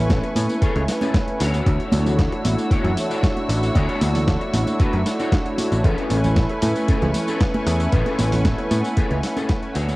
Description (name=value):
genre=nu-disco, nu disco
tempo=115 BPM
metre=4/4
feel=straight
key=A major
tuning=A4 = 440 Hz
part: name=warm analog pad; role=accompaniment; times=0.0-9.7 s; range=A3 to C#6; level=-24 LUFS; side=equal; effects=chorus, vintage 12-bit sampler grit, sidechain pumping, cassette tape, analog delay
part: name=rich studio string section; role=sustained chords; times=0.0-10.0 s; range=B4 to E6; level=-32 LUFS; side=equal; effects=sidechain pumping, cassette tape
part: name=picked electric bass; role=bass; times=0.0-9.9 s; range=A1 to A2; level=-21 LUFS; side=equal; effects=none
part: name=dusty soul sampler-style drum kit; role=drums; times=0.1-10.0 s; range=hi-hat, snare drum, tambourine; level=-29 LUFS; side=equal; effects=overdrive, cassette tape
part: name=electronic kick drum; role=drums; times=0.1-9.6 s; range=none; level=-20 LUFS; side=equal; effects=overdrive, cassette tape
part: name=congas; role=percussion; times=0.1-10.0 s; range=none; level=-28 LUFS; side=right 1 dB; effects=none
part: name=electric guitar at the edge of break-up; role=riff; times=0.2-10.0 s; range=C#4 to C#5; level=-29 LUFS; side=left 2 dB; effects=ensemble chorus, cassette tape, analog delay
room=light reverb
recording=home recording on cassette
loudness=-18 LUFS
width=side -20 dB against mid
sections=0.0-10.0 A section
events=fade-out 8.6-10.0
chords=0.0 Amaj9; 1.4 Dmaj9; 5.8 Amaj9